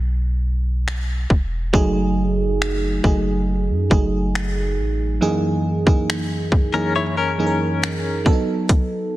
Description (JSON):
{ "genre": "contemporary R&B", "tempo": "69 BPM", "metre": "4/4", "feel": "straight", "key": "unclear", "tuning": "A4 = 440 Hz", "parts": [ { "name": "soft 808-style bass", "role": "bass", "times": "0.0-5.2 s", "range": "E1 to F#2", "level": "-22 LUFS", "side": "equal", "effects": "none" }, { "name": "trap drum kit", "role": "drums", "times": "0.9-8.9 s", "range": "finger snaps, hi-hat, kick drum", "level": "-19 LUFS", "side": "equal", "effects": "vintage 12-bit sampler grit, soft clipping on snare" }, { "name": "FM electric piano", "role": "accompaniment", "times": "1.7-9.2 s", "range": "F#2 to A#4", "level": "-21 LUFS", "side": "right 2 dB", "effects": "chorus" }, { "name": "direct-recorded clean electric guitar", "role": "arpeggios", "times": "6.7-8.2 s", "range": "C#4 to C#5", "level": "-22 LUFS", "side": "left 5 dB", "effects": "tremolo, digital delay" } ], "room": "light reverb", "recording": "dense, heavily limited modern master", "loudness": "-18 LUFS", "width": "side -16 dB against mid", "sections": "0.0-9.2 A section", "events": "none", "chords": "0.0 E5; 1.7 F#m69; 5.2 F#13; 8.3 B7" }